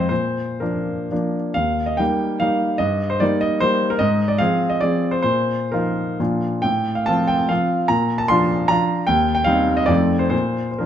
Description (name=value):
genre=classical, romantic triple-time dance for piano with dotted rhythms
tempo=113-162 BPM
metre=3/4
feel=rubato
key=Eb major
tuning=A4 = 440 Hz
part: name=warm grand piano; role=solo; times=0.0-10.9 s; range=Eb2 to C6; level=-17 LUFS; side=equal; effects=none
room=light reverb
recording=close, detailed microphones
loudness=-17 LUFS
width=side -9 dB against mid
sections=0.0-1.6 A section; 1.6-10.9 A section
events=none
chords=0.1 Bb; 1.6 Eb; 2.8 Eb/G; 4.0 Fm/Ab; 5.2 Bbsus4; 6.2 Bb; 6.6 F/A; 7.9 Bb; 9.1 Cm/Eb; 9.9 F7; 10.3 N.C.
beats=| 0.10 0.62 1.11 | 1.57 2.00 2.42 | 2.81 3.21 3.62 | 4.00 4.39 4.82 | 5.24 5.72 6.19 | 6.64 7.08 7.50 | 7.89 8.30 8.70 | 9.07 9.47 9.90 | 10.33 10.80